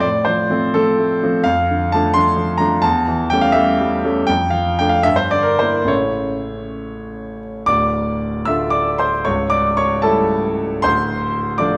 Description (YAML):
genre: classical, romantic character piece for solo piano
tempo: 64-91 BPM (dotted quarters)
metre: 6/8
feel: rubato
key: D minor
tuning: A4 = 440 Hz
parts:
  - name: clear concert grand piano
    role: solo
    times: 0.0-11.8 s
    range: C#1 to E6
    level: -18 LUFS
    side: equal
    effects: none
room: wet recital hall reverb, RT60 1.5 s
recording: dark, warm production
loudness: -17 LUFS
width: mono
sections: 0.0-7.7 A section; 7.7-11.8 B section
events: none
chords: 0.0 F/A; 1.5 Dm/F; 2.8 A7/E; 4.3 Dm/F; 5.0 Em7b5/G; 5.9 A; 7.7 Dm; 9.3 A7/C#; 10.8 Dm